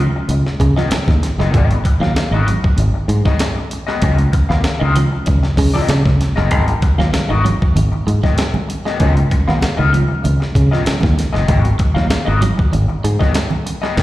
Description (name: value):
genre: funk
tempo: 96 BPM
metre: 4/4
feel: straight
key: G# dorian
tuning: A4 = 441 Hz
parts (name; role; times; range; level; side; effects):
- electric guitar at the edge of break-up; accompaniment; 0.0-14.0 s; B3 to E#5; -22 LUFS; left 5 dB; wah, spring reverb, plate reverb, slapback echo
- clean electric guitar; riff; 0.0-13.9 s; D#3 to C#4; -24 LUFS; right 4 dB; tremolo, slapback echo
- fingered electric bass; bass; 0.0-14.0 s; F#1 to C#3; -15 LUFS; equal; none
- breakbeat sampler-style drum kit; drums; 0.3-14.0 s; crash cymbal, hi-hat, kick drum, snare drum; -17 LUFS; equal; none
- congas; percussion; 6.7-13.6 s; none; -23 LUFS; right 3 dB; slapback echo
room: little or no reverb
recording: live gig heard through the venue's PA, recital hall reverb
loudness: -13 LUFS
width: side -16 dB against mid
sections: 0.0-14.0 A section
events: none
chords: 0.0 C#13; 1.5 G#m9; 4.0 C#13; 6.5 G#m9; 9.0 C#13; 11.5 G#m9